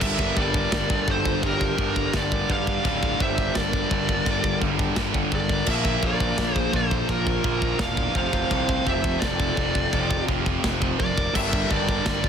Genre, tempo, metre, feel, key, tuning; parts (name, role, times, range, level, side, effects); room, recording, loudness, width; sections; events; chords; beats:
heavy metal; 85 BPM; 4/4; straight; A4 = 440 Hz
high-gain lead guitar; melody; 0.0-12.3 s; Bb4 to F5; -28 LUFS; equal; distortion
bluesy overdriven lead guitar; second line; 0.0-12.3 s; F4 to D5; -33 LUFS; right 4 dB; distortion, tape echo
distorted electric guitar; riff; 0.0-12.3 s; F2 to Bb3; -30 LUFS; left 13 dB; overdrive
heavy high-gain guitar; riff; 0.0-12.3 s; F2 to Bb3; -30 LUFS; right 12 dB; distortion
heavy high-gain guitar; riff; 0.0-12.3 s; F2 to Bb3; -32 LUFS; right 1 dB; distortion
fuzz picked electric bass; bass; 0.0-12.3 s; D1 to G2; -29 LUFS; equal; overdrive
tight metal drum kit; drums; 0.0-12.3 s; china cymbal, crash cymbal, kick drum, snare drum; -26 LUFS; equal
small room ambience; dense, heavily limited modern master; -21 LUFS; side -8 dB against mid
0.0-12.3 A section
0.0 Gm; 5.7 Bb; 8.2 F; 11.4 Gm
| 0.02 0.73 1.43 2.14 | 2.85 3.55 4.26 4.97 | 5.68 6.38 7.09 7.80 | 8.51 9.22 9.93 10.64 | 11.35 12.06